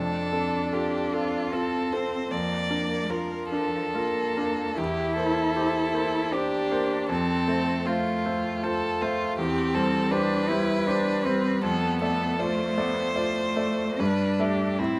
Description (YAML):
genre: classical, slow romantic movement for piano trio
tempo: 69-82 BPM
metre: 3/4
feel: rubato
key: F major, C major from 9.4 s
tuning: A4 = 440 Hz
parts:
  - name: rich violin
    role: melody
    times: 0.0-15.0 s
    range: E4 to D5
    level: -32 LUFS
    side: equal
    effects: none
  - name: rich cello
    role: second line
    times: 0.0-15.0 s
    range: F3 to E4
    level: -31 LUFS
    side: equal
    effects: none
  - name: bright grand piano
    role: accompaniment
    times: 0.0-15.0 s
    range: E2 to E5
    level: -30 LUFS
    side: equal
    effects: none
room: moderate recital hall reverb, RT60 1.4 s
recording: close, detailed microphones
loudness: -26 LUFS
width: mono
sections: 0.0-15.0 A section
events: none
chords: 0.0 F; 2.3 Bb/F; 4.8 C7/E; 7.1 F; 9.4 C/E; 11.6 Dm/F; 14.0 G69